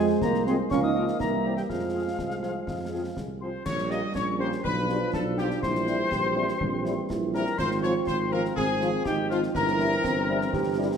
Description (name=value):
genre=military-style march for wind band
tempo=122 BPM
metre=2/4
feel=straight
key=F minor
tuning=A4 = 442 Hz
part: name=clear trumpet section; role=melody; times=0.0-11.0 s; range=F4 to Eb5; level=-34 LUFS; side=equal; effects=none
part: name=mellow euphonium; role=second line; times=0.0-11.0 s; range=F3 to G4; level=-30 LUFS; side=right 3 dB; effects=none
part: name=mellow woodwind section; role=second line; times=0.0-11.0 s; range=F4 to F5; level=-35 LUFS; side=left 2 dB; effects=none
part: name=piccolo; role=second line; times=0.0-11.0 s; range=F5 to Eb6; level=-33 LUFS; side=left 5 dB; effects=none
part: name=mellow French horn section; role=accompaniment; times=0.0-10.9 s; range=F3 to G4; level=-33 LUFS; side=left 3 dB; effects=none
part: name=mellow trombone section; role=sustained chords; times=0.0-11.0 s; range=E3 to C4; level=-34 LUFS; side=right 2 dB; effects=none
part: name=dark tuba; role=bass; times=0.0-10.9 s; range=G1 to F2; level=-31 LUFS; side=right 3 dB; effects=none
part: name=concert snare drum, concert bass drum and clash cymbals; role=drums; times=0.2-11.0 s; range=none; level=-37 LUFS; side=left 1 dB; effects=none
room=wet recital hall reverb, RT60 1.3 s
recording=minimal, uncompressed stereo recording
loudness=-24 LUFS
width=side -7 dB against mid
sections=0.0-3.7 A section; 3.7-11.0 B section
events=none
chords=0.0 Fm; 0.7 Bbm/Db; 1.2 C7; 1.7 Fm; 3.7 Gdim/Bb; 4.6 G7/B; 5.6 C7/Bb; 7.6 Fm/Ab; 9.6 C7/G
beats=0.22 | 0.71 1.20 | 1.69 2.18 | 2.67 3.17 | 3.66 4.15 | 4.64 5.13 | 5.62 6.11 | 6.61 7.10 | 7.59 8.08 | 8.57 9.06 | 9.55 10.05 | 10.54